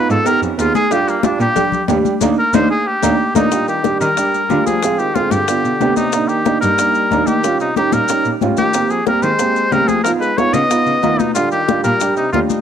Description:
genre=Afro-Cuban jazz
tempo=184 BPM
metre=4/4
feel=straight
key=Eb major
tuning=A4 = 440 Hz
part: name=warm trumpet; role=melody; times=0.0-12.6 s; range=Bb3 to Eb5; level=-17 LUFS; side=left 1 dB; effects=cassette tape
part: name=dark grand piano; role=accompaniment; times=0.0-12.6 s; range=G3 to Ab4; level=-18 LUFS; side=right 6 dB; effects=cassette tape
part: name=rich cello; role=bass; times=0.1-12.4 s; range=Eb2 to Eb3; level=-21 LUFS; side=left 1 dB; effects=none
part: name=congas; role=percussion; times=0.1-12.6 s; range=none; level=-21 LUFS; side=left 12 dB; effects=none
part: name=maracas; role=percussion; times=0.1-12.6 s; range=none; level=-30 LUFS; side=left 10 dB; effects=none
part: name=cowbell and bongos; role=percussion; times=0.3-12.6 s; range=none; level=-26 LUFS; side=left 12 dB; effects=none
part: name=warm trombone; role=second line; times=3.4-12.6 s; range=Bb2 to Cb4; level=-25 LUFS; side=left 9 dB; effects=cassette tape
room=light reverb, small room reverb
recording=home recording on cassette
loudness=-13 LUFS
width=side -8 dB against mid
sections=0.0-3.5 A section; 3.5-12.6 B section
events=trumpet solo 0.0-3.5; band accent 2.2-3.5; drum fill 3.0-3.5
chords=0.0 Db9 (rootless); 0.9 Ebmaj7; 4.8 Dm7b5; 5.5 G7; 6.1 Cm7 (rootless); 7.4 Eb7; 8.7 Abmaj9; 10.0 Db9 (rootless); 11.4 Ebmaj7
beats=0.26 0.59 | 0.91 1.24 1.56 1.89 | 2.21 2.54 2.87 3.19 | 3.52 3.84 4.17 4.50 | 4.82 5.15 5.47 5.80 | 6.13 6.46 6.78 7.11 | 7.43 7.76 8.09 8.41 | 8.74 9.07 9.39 9.72 | 10.05 10.37 10.70 11.03 | 11.35 11.68 12.01 12.33

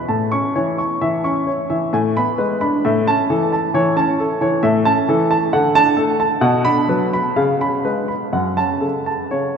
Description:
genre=classical, baroque-style suite movement for grand piano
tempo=65 BPM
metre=3/4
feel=uneven beats, rubato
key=A major, F# minor from 5.5 s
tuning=A4 = 440 Hz
part: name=warm baby grand piano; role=solo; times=0.0-9.6 s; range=F#2 to C#6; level=-15 LUFS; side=equal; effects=none
room=wet cathedral reverb, RT60 5.4 s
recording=in a vast, echoing space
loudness=-15 LUFS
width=side -6 dB against mid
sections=0.0-9.6 A section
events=none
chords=0.1 A; 1.9 G#dim/A; 2.8 A; 5.5 D; 6.4 Bm; 7.4 C#7; 8.4 F#m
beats=| 0.07 1.00 1.93 | 2.84 3.74 4.63 | 5.53 6.44 7.38 | 8.35 9.34

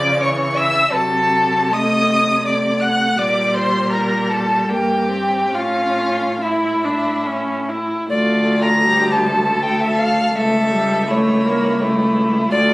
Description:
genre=classical, slow romantic movement for string quartet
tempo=67-87 BPM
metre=3/4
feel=rubato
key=unclear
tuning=A4 = 441 Hz
part: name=muted violin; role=melody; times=0.0-12.7 s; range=C#5 to Gb6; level=-19 LUFS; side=left 1 dB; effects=none
part: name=muted violin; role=second line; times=0.0-12.7 s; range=E4 to Gb5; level=-21 LUFS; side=equal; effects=none
part: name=muted viola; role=accompaniment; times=0.0-12.7 s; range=E3 to E4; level=-20 LUFS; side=equal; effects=none
part: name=muted cello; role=bass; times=0.0-12.7 s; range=C#2 to C#3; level=-23 LUFS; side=right 1 dB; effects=none
room=light reverb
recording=recorded on a phone in the room, studio reverb, compression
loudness=-15 LUFS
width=side -20 dB against mid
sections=0.0-8.1 A section; 8.1-12.7 B section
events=none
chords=0.0 A/C# (rootless); 0.9 Cdim7; 3.2 Gm/Bb; 5.5 A; 8.1 Dm; 10.3 A7/C#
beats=0.22 | 0.93 1.71 2.44 | 3.17 3.91 4.68 | 5.54 6.41 7.27 | 8.10 8.86 9.60 | 10.34 11.08 11.80 | 12.49

